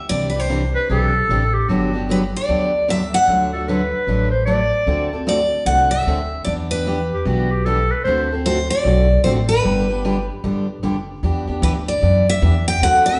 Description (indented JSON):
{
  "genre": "acoustic string swing (jazz manouche)",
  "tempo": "151 BPM",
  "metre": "4/4",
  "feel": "swing 64% on 8ths",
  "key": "G major",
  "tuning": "A4 = 441 Hz",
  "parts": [
    { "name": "picked steel-string acoustic guitar", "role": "melody", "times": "0.0-13.2 s", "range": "B4 to G5", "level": "-21 LUFS", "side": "equal", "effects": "slapback echo" },
    { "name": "picked steel-string acoustic guitar", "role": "accompaniment", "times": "0.1-13.2 s", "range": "C3 to A4", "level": "-26 LUFS", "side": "equal", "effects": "none" },
    { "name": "upright bass", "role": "bass", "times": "0.1-13.2 s", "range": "F#1 to F#2", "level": "-23 LUFS", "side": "equal", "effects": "none" },
    { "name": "breathy clarinet", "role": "second line", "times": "0.7-8.3 s", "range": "F#4 to D5", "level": "-23 LUFS", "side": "equal", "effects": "none" }
  ],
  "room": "wet large studio reverb, RT60 1.2 s",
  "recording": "band playing live in one room, nothing above 10.7 kHz",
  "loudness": "-18 LUFS",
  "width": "mono",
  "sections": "0.0-11.2 A section; 11.2-13.2 B section",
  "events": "none",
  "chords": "0.1 Cadd9; 1.7 Gmaj7; 3.3 D; 4.9 D7; 6.5 Em7; 8.0 D7; 9.6 G; 11.2 Em7"
}